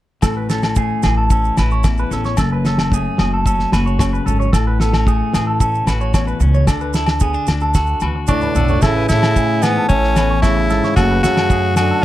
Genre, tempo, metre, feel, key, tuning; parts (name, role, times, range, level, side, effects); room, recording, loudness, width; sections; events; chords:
highlife guitar band; 112 BPM; 4/4; straight; A major; A4 = 439 Hz
clean electric guitar; accompaniment; 0.2-12.0 s; E2 to F#4; -23 LUFS; left 6 dB
clean electric guitar; arpeggios; 0.2-12.0 s; G#4 to C#5; -22 LUFS; right 3 dB; phaser, slapback echo
upright bass; bass; 0.2-11.9 s; F#1 to A2; -18 LUFS; equal
warm soul drum kit; drums; 0.2-11.9 s; kick drum, snare drum, toms; -18 LUFS; equal
agogo bells; percussion; 0.2-11.9 s; -28 LUFS; left 4 dB
maracas; percussion; 0.2-11.9 s; -33 LUFS; right 20 dB
raspy tenor saxophone; melody; 8.3-12.0 s; B3 to F#4; -18 LUFS; left 2 dB
brilliant trombone; second line; 8.3-12.0 s; G#2 to D3; -23 LUFS; right 11 dB
little or no reverb; dry, close 1970s-style studio recording; -14 LUFS; side -14 dB against mid
0.2-8.8 A section; 8.8-12.0 B section
drum fill 7.8-8.8
0.2 A; 2.4 F#m; 4.5 A; 6.7 D; 8.8 A; 11.0 F#m